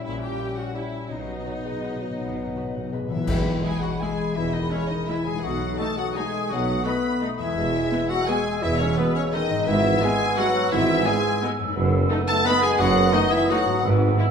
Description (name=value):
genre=classical, orchestral ballroom waltz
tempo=155-190 BPM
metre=3/4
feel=rubato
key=E major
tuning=A4 = 440 Hz
part: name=rich symphonic violin section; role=melody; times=0.0-13.8 s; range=B4 to B5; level=-30 LUFS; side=left 2 dB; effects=none
part: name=clear clarinet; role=second line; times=0.0-13.8 s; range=B3 to B4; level=-30 LUFS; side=equal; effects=none
part: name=mellow hollow flute section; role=second line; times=0.0-14.3 s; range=D#5 to E6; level=-32 LUFS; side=left 2 dB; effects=none
part: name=dark bassoon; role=accompaniment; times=0.0-14.3 s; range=F#3 to B3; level=-31 LUFS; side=right 2 dB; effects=none
part: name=rich symphonic viola section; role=accompaniment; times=0.0-14.3 s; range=G#3 to G4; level=-33 LUFS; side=right 1 dB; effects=none
part: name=mellow French horn section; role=sustained chords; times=0.0-13.8 s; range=B2 to C#4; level=-29 LUFS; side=left 2 dB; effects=none
part: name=concert harp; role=arpeggios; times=0.0-14.3 s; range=E2 to F#5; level=-31 LUFS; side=left 6 dB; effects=none
part: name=rich symphonic cello section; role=bass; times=0.1-14.1 s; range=E2 to B2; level=-30 LUFS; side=right 2 dB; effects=none
part: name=rich symphonic double bass section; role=bass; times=0.1-14.1 s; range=E1 to B1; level=-30 LUFS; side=right 3 dB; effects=none
part: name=warm symphonic violin section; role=second line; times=0.4-13.8 s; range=B3 to B5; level=-30 LUFS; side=left 2 dB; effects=none
part: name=cymbal swell, clash cymbals and concert bass drum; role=percussion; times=1.1-4.0 s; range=none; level=-32 LUFS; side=equal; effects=none
part: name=timpani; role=percussion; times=1.1-3.8 s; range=E2 to B2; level=-34 LUFS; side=equal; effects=none
part: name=dark tuba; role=bass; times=3.3-14.1 s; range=E1 to B1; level=-30 LUFS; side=right 4 dB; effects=none
room=wet recital hall reverb, RT60 1.4 s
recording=minimal, uncompressed stereo recording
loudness=-21 LUFS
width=side -6 dB against mid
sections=0.0-3.3 A section; 3.3-14.3 B section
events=timpani fill 1.1-3.3; band accent 3.3-3.6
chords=0.0 A#dim7; 1.1 B; 3.3 E; 5.4 B7; 7.6 E; 9.7 E/G#; 11.8 B7/F#